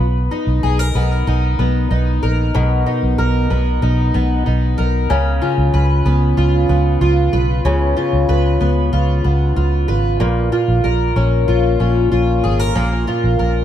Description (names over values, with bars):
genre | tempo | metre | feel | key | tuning
dream pop | 94 BPM | 4/4 | straight | B lydian | A4 = 440 Hz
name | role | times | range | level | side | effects
fingerpicked twelve-string acoustic guitar | arpeggios | 0.0-13.6 s | A#2 to B4 | -17 LUFS | left 1 dB | wide subtle chorus, tape echo
vintage muted fingered electric bass | bass | 0.0-13.6 s | G#1 to C#2 | -16 LUFS | right 1 dB | none
room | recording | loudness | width
light reverb, small room ambience | echo-heavy mix | -14 LUFS | side -10 dB against mid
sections
0.0-13.6 A section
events
none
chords
0.0 Bmaj7; 5.1 C#7; 10.2 A#m7